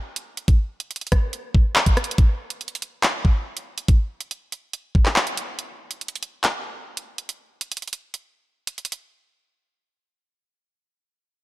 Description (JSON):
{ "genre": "hip hop", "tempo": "141 BPM", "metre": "4/4", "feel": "half-time", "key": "none", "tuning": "none", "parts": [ { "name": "drill drum kit", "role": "drums", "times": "0.2-9.0 s", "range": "handclaps, hi-hat, kick drum, rim click", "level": "-19 LUFS", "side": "equal", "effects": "none" } ], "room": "digital ambience", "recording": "none", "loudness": "-21 LUFS", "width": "side -18 dB against mid", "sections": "0.0-2.2 A section; 2.2-9.0 B section; 9.0-11.4 C section", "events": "kick muted 8.1-9.0", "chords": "none" }